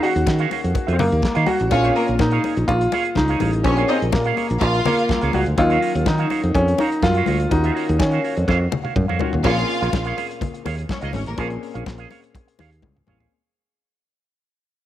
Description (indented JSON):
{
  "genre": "disco",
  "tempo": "124 BPM",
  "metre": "4/4",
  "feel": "straight",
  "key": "unclear",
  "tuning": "A4 = 441 Hz",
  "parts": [
    { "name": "clear grand piano", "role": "melody", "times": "0.0-8.4 s", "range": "Bb3 to Gb4", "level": "-21 LUFS", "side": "equal", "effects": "cassette tape" },
    { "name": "electric guitar with an envelope filter", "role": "accompaniment", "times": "0.0-13.3 s", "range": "Gb4 to F5", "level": "-28 LUFS", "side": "right 10 dB", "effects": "wide subtle chorus, cassette tape" },
    { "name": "warm concert grand piano", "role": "accompaniment", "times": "0.0-13.3 s", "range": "Bb2 to F5", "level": "-29 LUFS", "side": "left 9 dB", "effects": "cassette tape" },
    { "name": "damped 70s drum kit", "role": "drums", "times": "0.0-13.3 s", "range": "crash cymbal, handclaps, hi-hat, kick drum, snare drum, toms", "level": "-26 LUFS", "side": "equal", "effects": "cassette tape" },
    { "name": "fingered electric bass", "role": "bass", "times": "0.2-13.3 s", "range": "Ab1 to Eb3", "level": "-21 LUFS", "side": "equal", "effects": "none" },
    { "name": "congas", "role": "percussion", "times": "0.3-13.2 s", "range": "none", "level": "-28 LUFS", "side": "left 8 dB", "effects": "none" },
    { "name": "clear studio string section", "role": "second line", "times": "1.7-5.3, 9.4-11.4 s", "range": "Bb3 to F5", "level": "-25 LUFS", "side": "right 1 dB", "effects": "cassette tape" }
  ],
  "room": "light reverb, small room ambience",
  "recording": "home recording on cassette",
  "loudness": "-17 LUFS",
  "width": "side -12 dB against mid",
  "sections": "0.0-9.4 A section; 9.4-13.3 B section",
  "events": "drum fill 8.5-9.4, 12.8-13.3; fade-out 9.4-13.3",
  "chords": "0.0 Ebm9; 1.7 Bbm7; 5.6 Ebm9; 9.4 Bbm7"
}